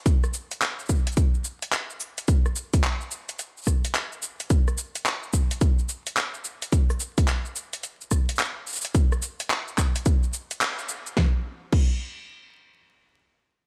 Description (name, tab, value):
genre	glitch hop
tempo	108 BPM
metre	4/4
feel	swing 63% on 16ths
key	none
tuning	none
part	electronic kick drum	drums	0.1-11.9 s	none	-24 LUFS	equal	studio reverb
part	pop drum kit	drums	0.1-11.9 s	crash cymbal, handclaps, hi-hat, rim click, shaker, snare drum	-31 LUFS	equal	studio reverb
room	digital ambience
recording	vinyl crackle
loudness	-26 LUFS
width	mono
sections	0.0-11.2 A section; 11.2-13.4 B section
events	drop 0.0-11.2; band accent 10.6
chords	none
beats	| 0.06 0.61 1.17 1.73 | 2.28 2.84 3.39 3.95 | 4.50 5.06 5.61 6.17 | 6.72 7.28 7.84 8.39 | 8.95 9.50 10.06 10.61 | 11.17 11.72